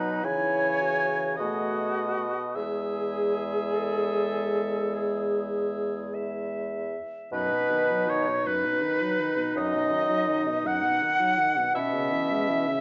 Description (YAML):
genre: classical, slow romantic movement for wind quintet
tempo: 49-55 BPM (dotted quarters)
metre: 12/8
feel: rubato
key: E major, B major from 7.3 s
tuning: A4 = 440 Hz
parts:
  - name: bright silver concert flute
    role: melody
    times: 0.0-12.8 s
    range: D#4 to F#5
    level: -31 LUFS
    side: equal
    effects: none
  - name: warm oboe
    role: second line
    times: 0.0-12.8 s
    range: B4 to G#5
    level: -32 LUFS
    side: equal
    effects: none
  - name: bright clarinet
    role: accompaniment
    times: 0.0-12.8 s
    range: C#4 to E5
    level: -35 LUFS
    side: equal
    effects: none
  - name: mellow French horn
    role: accompaniment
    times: 0.0-12.8 s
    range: F#2 to A3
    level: -37 LUFS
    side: equal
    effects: none
  - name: warm bassoon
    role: bass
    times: 0.0-12.7 s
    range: E2 to C#3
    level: -34 LUFS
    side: equal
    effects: none
room: wet recital hall reverb, RT60 1.8 s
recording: worn, warbling old tape, cassette tape, warbly pitch drift, nothing above 7.5 kHz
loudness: -27 LUFS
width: mono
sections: 0.0-7.3 A section; 7.3-12.8 B section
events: none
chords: 0.2 C#m; 1.4 B6; 2.6 E; 7.3 B/F#; 11.8 C#m7/B